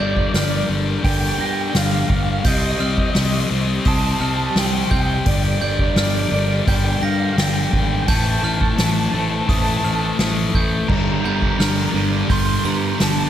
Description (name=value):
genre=post-rock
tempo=85 BPM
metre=4/4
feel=straight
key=G minor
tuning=A4 = 440 Hz
part: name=electric guitar through a small old amp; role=melody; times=0.0-13.3 s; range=D5 to C6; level=-25 LUFS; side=right 2 dB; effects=analog delay
part: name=clear studio string section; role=sustained chords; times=0.0-13.3 s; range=G3 to Eb5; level=-32 LUFS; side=right 2 dB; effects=none
part: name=glockenspiel with brass mallets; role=arpeggios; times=0.0-13.3 s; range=Eb6 to Bb7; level=-30 LUFS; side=right 6 dB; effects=analog delay
part: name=thick fuzz guitar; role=riff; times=0.0-13.3 s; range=G2 to C4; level=-22 LUFS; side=left 4 dB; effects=distortion
part: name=fingered electric bass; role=bass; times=0.0-13.3 s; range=G1 to G2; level=-23 LUFS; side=right 1 dB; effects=none
part: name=soft-mallet drum kit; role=drums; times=0.2-13.2 s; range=crash cymbal, hi-hat, kick drum, snare drum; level=-22 LUFS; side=equal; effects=none
part: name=sludgy distorted guitar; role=riff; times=10.9-13.3 s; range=G2 to G3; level=-23 LUFS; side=right 10 dB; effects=overdrive
room=moderate lush hall reverb, RT60 2.3 s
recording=dreamy mix soaked in reverb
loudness=-16 LUFS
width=side -10 dB against mid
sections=0.0-13.3 A section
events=none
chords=0.0 Gm; 2.5 Cm; 5.3 Gm; 8.1 Adim; 10.9 Gm